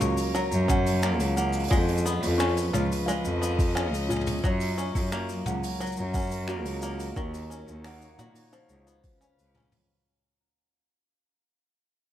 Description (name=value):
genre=folktronica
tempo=88 BPM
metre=4/4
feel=straight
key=F# major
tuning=A4 = 440 Hz
part: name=buzzing kalimba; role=second line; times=0.0-9.9 s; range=E#4 to C#6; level=-34 LUFS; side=right 1 dB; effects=tape echo
part: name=dark string quartet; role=sustained chords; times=0.0-9.9 s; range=C#3 to F#5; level=-36 LUFS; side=equal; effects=none
part: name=bluegrass banjo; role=arpeggios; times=0.0-10.5 s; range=D#3 to F#4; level=-33 LUFS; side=left 1 dB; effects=tape echo
part: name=rich cello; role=bass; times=0.0-9.8 s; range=C#2 to A#2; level=-28 LUFS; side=equal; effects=none
part: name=jazz brush drum kit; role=drums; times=0.0-9.9 s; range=finger snaps, hi-hat, shaker, toms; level=-35 LUFS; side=left 1 dB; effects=none
part: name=electronic kick drum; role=drums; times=0.7-9.2 s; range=none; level=-27 LUFS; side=equal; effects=overdrive
room=small room ambience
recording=none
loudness=-24 LUFS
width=side -12 dB against mid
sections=0.0-9.9 A section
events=fade-out 2.6-9.9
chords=0.0 F#; 1.7 C#7; 4.4 F#; 7.2 D#m7; 8.5 C#7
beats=0.35 1.03 | 1.71 2.39 3.08 3.76 | 4.44 5.12 5.80 6.49 | 7.17 7.85 8.53 9.21